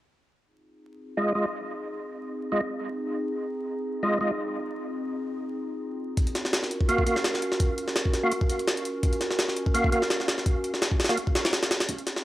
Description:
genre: drum and bass, jungle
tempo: 168 BPM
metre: 4/4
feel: swing 54% on 16ths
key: F phrygian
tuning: A4 = 438 Hz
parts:
  - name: warbly tape-like pad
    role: sustained chords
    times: 1.0-12.2 s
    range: C4 to Bb4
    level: -32 LUFS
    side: equal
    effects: chorus, built-in reverb, vintage 12-bit sampler grit
  - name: tonewheel organ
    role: stabs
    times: 1.2-4.3, 6.9-11.2 s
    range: Ab3 to F5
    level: -28 LUFS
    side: right 1 dB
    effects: overdrive, chorus vibrato, slow rotary speaker, low-pass filter, dub echo
  - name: jungle sampler-style drum kit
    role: drums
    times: 6.2-12.2 s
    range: hi-hat, kick drum, snare drum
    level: -25 LUFS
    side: equal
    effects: high-pass filter on kick, studio reverb, high-pass filter on hats, high-pass filter on snare
room: moderate plate reverb, RT60 1.4 s, digital ambience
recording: dry, gritty hardware recording, vinyl crackle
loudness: -25 LUFS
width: side -15 dB against mid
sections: 0.5-11.9 A section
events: filter sweep on tonewheel organ 0.5-11.9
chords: 0.5 Fm7; 6.2 Gbmaj7

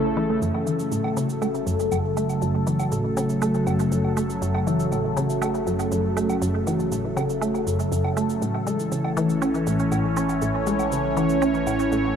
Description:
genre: ambient, sequencer-driven space music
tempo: 120 BPM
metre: 4/4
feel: straight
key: unclear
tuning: A4 = 440 Hz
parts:
  - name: phased analog pad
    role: sustained chords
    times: 0.0-12.2 s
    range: C#3 to C#5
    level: -23 LUFS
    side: equal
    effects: phaser, chorus
  - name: resonant blip pluck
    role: riff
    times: 0.0-12.2 s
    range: F#2 to C#4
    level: -25 LUFS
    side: equal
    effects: chorus, analog delay
  - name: warm sub bass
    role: bass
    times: 0.0-12.2 s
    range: F#1 to A1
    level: -41 LUFS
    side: equal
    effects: none
  - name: cabasa and woodblock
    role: percussion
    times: 0.4-12.1 s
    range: none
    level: -36 LUFS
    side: right 5 dB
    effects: overdrive, analog delay
room: moderate huge ambient reverb, RT60 8.6 s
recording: none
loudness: -21 LUFS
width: side -8 dB against mid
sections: 0.4-12.2 A section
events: fade-in on sub bass 0.4-12.2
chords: 0.4 F#m; 8.4 A

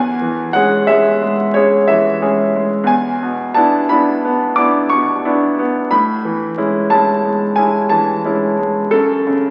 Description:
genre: classical, romantic nocturne for solo piano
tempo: 60 BPM (dotted quarters)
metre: 9/8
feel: rubato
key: C# minor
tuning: A4 = 439 Hz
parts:
  - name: clear grand piano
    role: solo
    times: 0.0-9.5 s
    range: E2 to D6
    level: -15 LUFS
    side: equal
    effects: none
room: wet scoring stage reverb, RT60 1.9 s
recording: very old 78 rpm record, vinyl crackle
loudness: -15 LUFS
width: mono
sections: 0.0-9.5 A section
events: none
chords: 0.0 C#m/E; 2.9 E7; 5.9 Amaj7; 8.9 D#m7b5/F# (rootless)

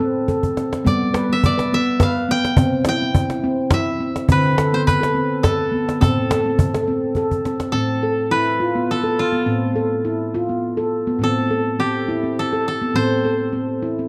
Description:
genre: world meditative, meditative tuned percussion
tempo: 104 BPM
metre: 3/4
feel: swing 54% on 16ths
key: A minor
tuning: A4 = 440 Hz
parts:
  - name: koto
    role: melody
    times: 0.0-14.1 s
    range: F4 to G5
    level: -25 LUFS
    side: equal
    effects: none
  - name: handpan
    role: arpeggios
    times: 0.0-14.1 s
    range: A2 to B4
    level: -22 LUFS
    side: equal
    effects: none
  - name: cajon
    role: percussion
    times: 0.3-7.7 s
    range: none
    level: -22 LUFS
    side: equal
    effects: none
room: wet echo chamber reverb, RT60 1.5 s, small room ambience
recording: dark, warm production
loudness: -19 LUFS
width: mono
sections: 0.0-7.7 A section; 7.7-14.1 B section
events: drum fill 0.3-0.9, 7.2-7.7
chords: 0.0 Am; 0.9 G; 2.6 C; 4.3 D5; 6.0 Am; 7.7 Amadd9; 11.2 C5/A

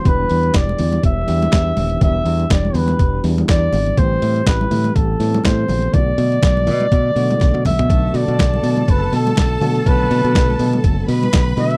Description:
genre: disco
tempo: 122 BPM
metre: 4/4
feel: swing 56% on 16ths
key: unclear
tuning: A4 = 439 Hz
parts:
  - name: warm flugelhorn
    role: melody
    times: 0.0-11.8 s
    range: A4 to E5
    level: -23 LUFS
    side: equal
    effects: none
  - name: tine electric piano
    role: accompaniment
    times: 0.0-11.8 s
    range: C3 to A4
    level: -26 LUFS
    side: equal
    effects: none
  - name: modern bright fingered electric bass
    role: bass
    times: 0.1-11.8 s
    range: D#1 to B2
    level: -21 LUFS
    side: equal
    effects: none
  - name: boom bap sampler-style drum kit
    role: drums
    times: 0.1-11.8 s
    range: handclaps, hi-hat, kick drum, snare drum, toms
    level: -20 LUFS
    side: equal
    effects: none
  - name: congas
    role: percussion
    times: 0.1-11.7 s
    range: none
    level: -28 LUFS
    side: equal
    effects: none
  - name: warm studio violin section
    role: second line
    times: 7.9-11.8 s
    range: A4 to B5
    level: -28 LUFS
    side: equal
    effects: none
room: little or no reverb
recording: dry, close 1970s-style studio recording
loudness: -16 LUFS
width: mono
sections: 0.0-7.9 A section; 7.9-11.8 B section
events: drum fill 7.4-7.9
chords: 0.1 Em7; 4.0 Am7; 5.9 Bm7

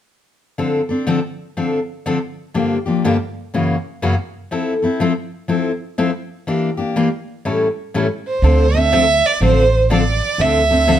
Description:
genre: acoustic string swing (jazz manouche)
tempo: 122 BPM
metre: 4/4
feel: swing 64% on 8ths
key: D minor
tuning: A4 = 440 Hz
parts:
  - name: picked steel-string acoustic guitar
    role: accompaniment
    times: 0.6-11.0 s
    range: F#2 to A4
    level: -18 LUFS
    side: left 2 dB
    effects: none
  - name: rich violin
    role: melody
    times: 8.3-11.0 s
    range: C5 to E5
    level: -15 LUFS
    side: right 3 dB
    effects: plate reverb
  - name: upright bass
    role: bass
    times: 8.4-11.0 s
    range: A1 to D2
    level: -16 LUFS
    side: right 1 dB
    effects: none
room: moderate studio reverb, RT60 0.9 s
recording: dark, warm production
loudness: -16 LUFS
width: side -11 dB against mid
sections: 0.6-8.4 A section; 8.4-11.0 B section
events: none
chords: 0.6 Dm7; 2.5 Gm7; 3.5 F#7; 4.5 Fmaj7; 6.5 Em7b5; 7.5 A7; 8.4 Dm7

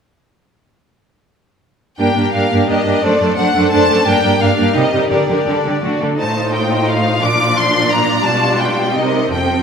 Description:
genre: classical, dramatic, fast romantic movement for symphony orchestra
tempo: 172 BPM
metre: 3/4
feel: uneven beats, rubato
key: G minor, Bb major from 6.2 s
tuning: A4 = 441 Hz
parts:
  - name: bright symphonic violin section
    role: melody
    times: 2.0-9.6 s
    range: D5 to D6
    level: -17 LUFS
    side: left 2 dB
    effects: none
  - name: warm symphonic violin section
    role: second line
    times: 2.0-9.6 s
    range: C4 to D5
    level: -19 LUFS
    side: left 2 dB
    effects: none
  - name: rich symphonic viola section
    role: accompaniment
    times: 2.0-9.6 s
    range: F3 to Eb4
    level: -17 LUFS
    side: right 2 dB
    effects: none
  - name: clear symphonic cello section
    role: bass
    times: 2.0-9.6 s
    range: F2 to D3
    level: -20 LUFS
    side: right 2 dB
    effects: none
room: wet scoring stage reverb, RT60 2.0 s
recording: minimal, uncompressed stereo recording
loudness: -12 LUFS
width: side -6 dB against mid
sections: 2.0-9.6 A section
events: none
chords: 2.0 Gm; 3.0 D7/F#; 4.1 Gm; 4.7 Cm7; 5.1 Gm/D; 5.8 D; 6.2 F7/A; 7.2 Bb; 8.2 G7/B; 8.9 Cm7

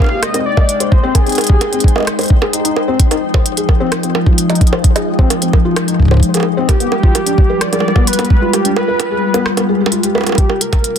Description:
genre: IDM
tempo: 130 BPM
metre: 4/4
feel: straight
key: unclear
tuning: A4 = 436 Hz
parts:
  - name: warm velvety synth lead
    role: melody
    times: 0.0-2.5, 6.7-11.0 s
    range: G4 to F5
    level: -19 LUFS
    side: equal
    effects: chorus, cassette tape, ping-pong delay
  - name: glassy FM pad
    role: sustained chords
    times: 0.0-11.0 s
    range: C3 to G5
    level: -17 LUFS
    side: left 2 dB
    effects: ensemble chorus, built-in reverb, vintage 12-bit sampler grit
  - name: electronic kick drum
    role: drums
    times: 0.0-10.8 s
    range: none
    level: -11 LUFS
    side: equal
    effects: none
  - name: organic electronic drum kit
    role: drums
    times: 0.0-11.0 s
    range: bongos, hi-hat, rim click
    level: -18 LUFS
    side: right 4 dB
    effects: none
  - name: felt-muted upright piano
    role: arpeggios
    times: 0.1-10.3 s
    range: B3 to Eb5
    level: -20 LUFS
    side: left 4 dB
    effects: ping-pong delay
room: light reverb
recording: dense, heavily limited modern master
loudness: -11 LUFS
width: side -8 dB against mid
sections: 0.0-10.4 A section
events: kick drops out 8.5-10.4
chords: 0.0 Abmaj7; 3.0 Fm9; 6.7 G7b9; 10.4 Cm7

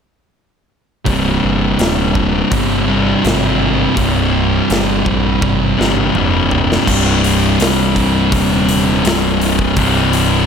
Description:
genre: stoner and doom metal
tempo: 83 BPM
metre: 4/4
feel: straight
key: unclear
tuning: A4 = 440 Hz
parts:
  - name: thick fuzz guitar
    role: riff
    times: 1.1-10.5 s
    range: C2 to C3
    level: -16 LUFS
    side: left 10 dB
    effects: distortion
  - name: thick fuzz guitar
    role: riff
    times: 1.1-10.5 s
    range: C2 to C3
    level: -17 LUFS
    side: right 11 dB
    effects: distortion
  - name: fuzz picked electric bass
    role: bass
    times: 1.1-10.5 s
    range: C1 to Bb1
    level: -19 LUFS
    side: equal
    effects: overdrive
  - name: big rock drum kit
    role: drums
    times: 1.1-10.3 s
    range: crash cymbal, hi-hat, kick drum, snare drum, toms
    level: -20 LUFS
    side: equal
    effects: none
room: light reverb, small room ambience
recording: none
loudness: -12 LUFS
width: side -7 dB against mid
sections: 1.1-6.9 A section; 6.9-10.5 B section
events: drum fill 5.4-6.9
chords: 1.1 C5; 6.9 Cm

